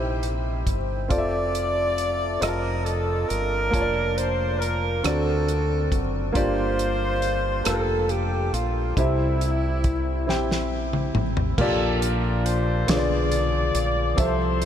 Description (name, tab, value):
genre	slow gospel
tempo	46 BPM (dotted quarters)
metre	6/8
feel	straight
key	F major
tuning	A4 = 440 Hz
part	clear alto saxophone	melody	0.0-10.7 s	E4 to D5	-29 LUFS	right 3 dB	none
part	warm horn section	melody	0.0-14.7 s	G3 to D5	-29 LUFS	left 3 dB	ping-pong delay
part	warm concert grand piano	accompaniment	0.0-14.7 s	G2 to A5	-26 LUFS	equal	none
part	deep dub fingered electric bass	bass	0.0-14.7 s	F1 to D2	-27 LUFS	equal	none
part	warm soul drum kit	drums	0.2-14.7 s	crash cymbal, hi-hat, kick drum, rim click, snare drum, toms	-28 LUFS	equal	none
room	moderate huge ambient reverb, RT60 6.4 s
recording	dreamy mix soaked in reverb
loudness	-21 LUFS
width	side -9 dB against mid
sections	0.0-11.6 A section; 11.6-14.7 B section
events	drum fill 10.3-11.6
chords	0.0 C; 1.1 Fmaj7; 2.4 F7; 3.7 Bbmaj7/F; 5.0 D7; 6.3 Gm7; 9.0 C; 11.6 Bb6; 12.9 Bdim7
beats	| 1.10 2.41 | 3.73 5.04 | 6.35 7.66 | 8.97 10.27 | 11.58 12.88 | 14.18